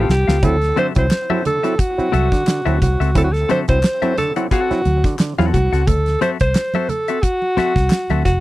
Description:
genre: funk.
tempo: 88 BPM.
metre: 4/4.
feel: swing 56% on 16ths.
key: unclear.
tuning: A4 = 440 Hz.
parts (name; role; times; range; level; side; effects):
warm alto saxophone; melody; 0.0-8.4 s; F#4 to C5; -19 LUFS; equal; none.
semi-hollow electric guitar; accompaniment; 0.0-8.2 s; B3 to F#5; -22 LUFS; left 9 dB; none.
auto-wah clav; stabs; 0.0-5.6 s; D3 to E4; -24 LUFS; right 2 dB; tape echo.
vintage muted fingered electric bass; bass; 0.0-8.4 s; F1 to E2; -18 LUFS; equal; none.
damped 70s drum kit; drums; 0.1-8.4 s; hi-hat, kick drum, snare drum; -19 LUFS; equal; none.
congas; percussion; 0.4-8.4 s; none; -26 LUFS; right 4 dB; none.
group handclap; percussion; 1.1-8.1 s; none; -32 LUFS; left 5 dB; none.
room: little or no reverb.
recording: dry, close 1970s-style studio recording.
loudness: -15 LUFS.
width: side -17 dB against mid.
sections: 0.0-8.4 A section.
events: drum fill 0.0-0.4.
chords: 0.4 D9.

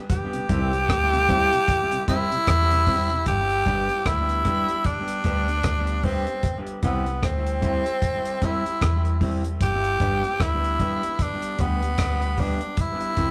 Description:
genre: roots reggae.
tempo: 76 BPM.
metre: 4/4.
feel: swing 59% on 16ths.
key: G major.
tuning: A4 = 441 Hz.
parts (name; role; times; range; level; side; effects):
raspy tenor saxophone; melody; 0.1-13.3 s; B3 to G4; -26 LUFS; equal; none.
deep reggae drum kit; drums; 0.1-13.3 s; hi-hat, kick drum, rim click; -29 LUFS; equal; none.
mellow tonewheel organ; accompaniment; 0.3-3.2 s; C3 to E4; -37 LUFS; equal; overdrive, chorus vibrato, slow rotary speaker.
mellow electric guitar; accompaniment; 0.5-13.3 s; G3 to G4; -32 LUFS; equal; tape echo.
deep dub fingered electric bass; bass; 0.5-13.3 s; G1 to E2; -28 LUFS; equal; none.
room: moderate stone room reverb, RT60 1.1 s.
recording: rough rehearsal-room recording.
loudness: -23 LUFS.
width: mono.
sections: 0.0-3.3 A section; 3.3-13.3 B section.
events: none.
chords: 0.1 C; 3.3 G; 6.4 C; 9.6 G; 12.8 C.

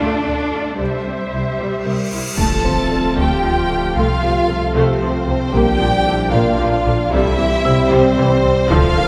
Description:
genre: cinematic, hybrid orchestral and electronic film score.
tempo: 76 BPM (dotted quarters).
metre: 6/8.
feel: straight.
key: unclear.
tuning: A4 = 440 Hz.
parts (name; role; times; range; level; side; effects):
dark symphonic violin section; second line; 0.0-9.1 s; C4 to E5; -26 LUFS; equal; none.
dark symphonic viola section; accompaniment; 0.0-9.1 s; C3 to G4; -24 LUFS; equal; none.
rich symphonic cello section; bass; 0.0-9.0 s; Bb2 to D4; -27 LUFS; equal; none.
rich symphonic double bass section; bass; 0.0-9.0 s; Bb1 to D2; -25 LUFS; equal; none.
felt-muted upright piano; texture; 0.0-9.1 s; G3 to E6; -28 LUFS; equal; none.
cymbal swell and impact; sound effects; 1.9-4.0 s; none; -27 LUFS; equal; none.
warm symphonic violin section; melody; 2.4-9.1 s; C5 to A5; -24 LUFS; equal; none.
warm trombone section; sustained chords; 2.4-9.1 s; F3 to D4; -25 LUFS; equal; none.
pure sine sub bass; bass; 2.4-9.1 s; D1 to C2; -26 LUFS; equal; none.
mellow French horn section; sustained chords; 3.2-9.1 s; E4 to C5; -25 LUFS; equal; none.
room: wet church reverb, RT60 2.6 s.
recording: recorded in a church or concert hall.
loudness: -17 LUFS.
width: mono.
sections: 0.0-2.4 A section; 2.4-9.1 B section.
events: cymbal swell 1.9-2.4; impact 2.4-4.0.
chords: 0.0 D5; 0.8 C; 2.4 Dm; 4.0 F/C; 5.5 Bb; 7.1 C.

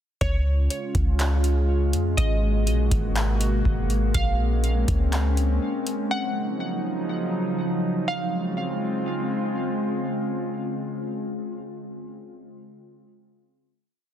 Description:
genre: hip hop, atmospheric cloud-rap.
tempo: 122 BPM.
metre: 4/4.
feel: half-time.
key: Db major.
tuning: A4 = 443 Hz.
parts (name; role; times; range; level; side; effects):
glassy wavetable pluck; melody; 0.2-9.5 s; Db5 to Gb5; -32 LUFS; right 1 dB; chorus, low-pass filter, tape echo.
warbly tape-like pad; sustained chords; 0.6-11.1 s; Cb3 to Gb4; -26 LUFS; equal; chorus, built-in reverb.
soft 808-style bass; bass; 0.2-5.6 s; Ab1 to F2; -22 LUFS; equal; none.
booming analog drum machine; drums; 0.2-6.0 s; handclaps, hi-hat, kick drum; -26 LUFS; equal; none.
room: little or no reverb.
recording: dense, heavily limited modern master.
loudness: -22 LUFS.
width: side -10 dB against mid.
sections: 0.2-8.1 verse; 8.1-12.0 final chord.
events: none.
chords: 0.2 Db; 2.2 Abm9; 4.1 Bbm9; 6.1 Ebm9; 8.1 Dbmaj7.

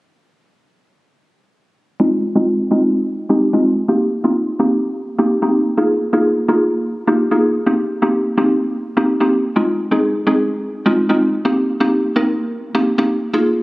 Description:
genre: pop.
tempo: 127 BPM.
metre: 4/4.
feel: straight.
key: C minor.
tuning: A4 = 440 Hz.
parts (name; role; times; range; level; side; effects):
mallet-like synth pluck; solo; 2.0-13.6 s; Ab3 to Bb4; -14 LUFS; equal; chorus, low-pass filter.
room: moderate lush hall reverb, RT60 2.4 s.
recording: recorded on a phone in the room, club reverb.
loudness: -14 LUFS.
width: side -20 dB against mid.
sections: 2.0-13.6 A section.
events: filter sweep on synth pluck 2.0-13.6.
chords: 2.0 Fm7; 3.9 Cm7; 5.8 Bb7sus4; 7.7 Cm7; 9.6 Fm7; 11.4 Cm7.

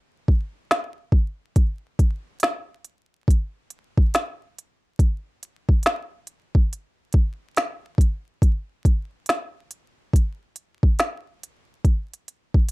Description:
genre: hip hop.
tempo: 70 BPM.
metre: 4/4.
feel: swing 64% on 16ths.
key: none.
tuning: none.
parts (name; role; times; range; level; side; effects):
organic electronic drum kit; drums; 0.3-12.7 s; finger snaps, hi-hat, kick drum, snare drum; -18 LUFS; equal; overdrive.
room: little or no reverb.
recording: vinyl crackle.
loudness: -21 LUFS.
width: side -23 dB against mid.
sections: 0.0-12.7 A section.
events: break 0.0-1.6.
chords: none.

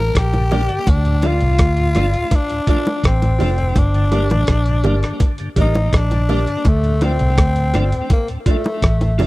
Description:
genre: roots reggae.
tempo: 83 BPM.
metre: 4/4.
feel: straight.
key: G minor.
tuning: A4 = 440 Hz.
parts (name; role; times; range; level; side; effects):
growling tenor saxophone; melody; 0.0-9.2 s; A3 to Bb4; -21 LUFS; left 2 dB; tape echo.
vintage muted fingered electric bass; bass; 0.0-9.3 s; F1 to D2; -16 LUFS; equal; none.
dusty soul sampler-style drum kit; drums; 0.1-9.3 s; hi-hat, kick drum, rim click; -17 LUFS; equal; none.
tonewheel organ; accompaniment; 0.3-9.3 s; D2 to D4; -26 LUFS; left 1 dB; slow rotary speaker, tape echo.
bongos; percussion; 0.3-9.3 s; none; -23 LUFS; equal; none.
electric guitar through a small old amp; accompaniment; 0.5-9.3 s; F4 to D5; -27 LUFS; right 4 dB; wide subtle chorus, tape echo.
room: little or no reverb.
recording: dry, close 1970s-style studio recording.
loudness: -14 LUFS.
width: side -19 dB against mid.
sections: 0.0-9.3 A section.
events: none.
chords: 0.0 Gm; 0.9 Dm; 3.8 Gm; 6.7 Dm.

